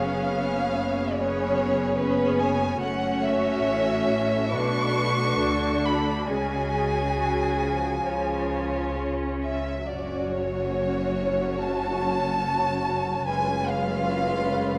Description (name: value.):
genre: classical, slow romantic movement for string orchestra.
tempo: 69 BPM.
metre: 4/4.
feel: uneven beats, rubato.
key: F# minor.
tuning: A4 = 439 Hz.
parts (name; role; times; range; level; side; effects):
rich chamber violin section; melody; 0.0-14.8 s; B4 to C#6; -30 LUFS; equal; none.
rich chamber violin section; second line; 0.0-14.8 s; E#4 to C#5; -32 LUFS; equal; none.
rich chamber viola section; accompaniment; 0.0-14.8 s; E#3 to D4; -32 LUFS; equal; none.
clear chamber cello section; bass; 0.0-14.8 s; F#2 to D3; -34 LUFS; equal; none.
rich chamber double bass section; bass; 0.0-14.8 s; F#1 to D2; -35 LUFS; equal; none.
room: moderate scoring stage reverb, RT60 1.8 s.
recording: none.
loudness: -25 LUFS.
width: mono.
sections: 0.0-14.8 A section.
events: none.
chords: 0.0 C#7/F#; 2.8 F#m; 4.5 Bm7; 6.3 C#sus4; 8.1 C#; 9.9 F#m; 13.3 C#7/F#.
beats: 0.33 1.16 1.98 | 2.80 3.63 4.53 5.39 | 6.28 7.17 8.09 8.99 | 9.87 10.72 11.62 12.47 | 13.29 14.12.